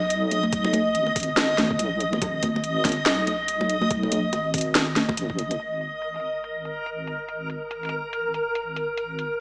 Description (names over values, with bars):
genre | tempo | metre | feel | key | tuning
deep dubstep | 142 BPM | 4/4 | swing 58% on 16ths, half-time | G# minor | A4 = 442 Hz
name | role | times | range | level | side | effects
deep soft wobble bass | bass | 0.0-9.4 s | G#1 to B1 | -32 LUFS | equal | chorus
backwards swelling texture | texture | 0.0-9.4 s | A#4 to D#5 | -29 LUFS | equal | built-in reverb
garage drum kit | drums | 0.1-9.3 s | hi-hat, snare drum | -28 LUFS | equal | overdrive, low-pass filter on hats, small room ambience, low-pass filter on snare
congas | percussion | 0.3-5.6 s | none | -31 LUFS | equal | none
electronic kick drum | drums | 0.5-5.4 s | none | -36 LUFS | equal | small room ambience
room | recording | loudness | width
wet lush hall reverb, RT60 1.9 s | small speaker sound | -25 LUFS | mono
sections
0.0-5.6 A section; 5.6-9.4 B section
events
filter sweep on drum 5.6-9.4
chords
0.0 G#m; 5.6 G#sus2